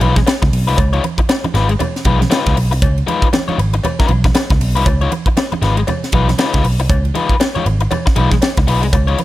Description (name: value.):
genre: funk.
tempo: 118 BPM.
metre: 4/4.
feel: swing 60% on 16ths.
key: Db mixolydian.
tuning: A4 = 440 Hz.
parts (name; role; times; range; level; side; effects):
biting overdriven guitar; accompaniment; 0.0-9.2 s; Ab3 to Db5; -19 LUFS; left 5 dB; none.
vintage muted picked electric bass; bass; 0.0-9.1 s; Ab1 to Db2; -15 LUFS; equal; none.
crisp fusion drum kit; drums; 0.0-9.2 s; hi-hat, kick drum, ride cymbal, snare drum; -17 LUFS; equal; none.
congas; percussion; 0.0-9.2 s; none; -24 LUFS; right 6 dB; none.
cowbell; percussion; 0.3-9.1 s; none; -26 LUFS; left 4 dB; none.
room: light reverb, studio reverb.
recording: none.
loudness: -12 LUFS.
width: side -15 dB against mid.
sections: 0.0-9.2 A section.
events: none.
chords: 0.0 Db9.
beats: 0.27 | 0.78 1.29 1.80 2.31 | 2.82 3.33 3.84 4.35 | 4.86 5.37 5.88 6.39 | 6.89 7.40 7.91 8.42 | 8.93.